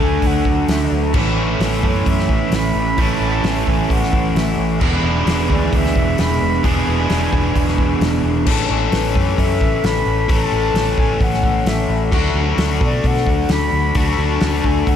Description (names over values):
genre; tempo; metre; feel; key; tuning
rock, shoegaze and dream pop; 131 BPM; 4/4; straight; A major; A4 = 441 Hz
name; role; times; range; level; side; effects
reedy silver concert flute; melody; 0.0-15.0 s; C#5 to B5; -25 LUFS; right 2 dB; ping-pong delay
direct-recorded clean electric guitar; arpeggios; 0.0-15.0 s; E3 to A4; -29 LUFS; right 9 dB; wide subtle chorus, ping-pong delay
biting overdriven guitar; riff; 0.0-15.0 s; E2 to A4; -20 LUFS; left 6 dB; lush chorus
crunchy overdriven guitar; riff; 0.0-8.5 s; A2 to G#4; -22 LUFS; right 10 dB; reverse reverb
vintage muted fingered electric bass; bass; 0.0-15.0 s; E1 to B2; -21 LUFS; equal; none
loose indie drum kit; drums; 0.2-15.0 s; crash cymbal, hi-hat, kick drum, snare drum; -20 LUFS; equal; none
room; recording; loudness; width
moderate huge ambient reverb, RT60 4.1 s; dreamy mix soaked in reverb; -14 LUFS; side -9 dB against mid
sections
0.0-8.5 A section; 8.5-15.0 A section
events
none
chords
0.0 D; 1.1 Aadd9; 4.8 E7; 8.5 Aadd9; 12.1 D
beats
0.23 0.69 | 1.15 1.61 2.07 2.52 | 2.98 3.44 3.90 4.36 | 4.81 5.27 5.73 6.19 | 6.64 7.10 7.56 8.01 | 8.47 8.93 9.38 9.84 | 10.30 10.76 11.21 11.67 | 12.13 12.59 13.04 13.50 | 13.96 14.41 14.87